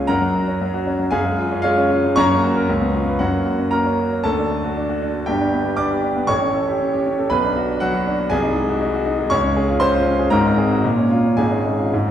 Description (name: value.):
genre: classical, virtuoso piano study.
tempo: 117 BPM.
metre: 2/4.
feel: rubato.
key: F# major, D major from 4.2 s, Db major from 8.3 s.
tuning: A4 = 443 Hz.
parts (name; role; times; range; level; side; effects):
clear grand piano; solo; 0.0-12.1 s; G1 to D6; -16 LUFS; equal; none.
room: wet recital hall reverb, RT60 1.7 s.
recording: heard from further back in the room.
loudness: -16 LUFS.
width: side -10 dB against mid.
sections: 0.0-4.2 A section; 4.2-12.1 B section.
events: none.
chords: 0.1 F#; 1.1 C#/F#; 2.2 F#; 2.7 C#7; 3.2 F#; 4.2 D; 5.3 G; 6.3 A7; 7.3 Bm; 8.3 Ab7/C; 9.3 Db; 10.3 Ab7; 10.8 Bbm; 11.4 Db/Ab.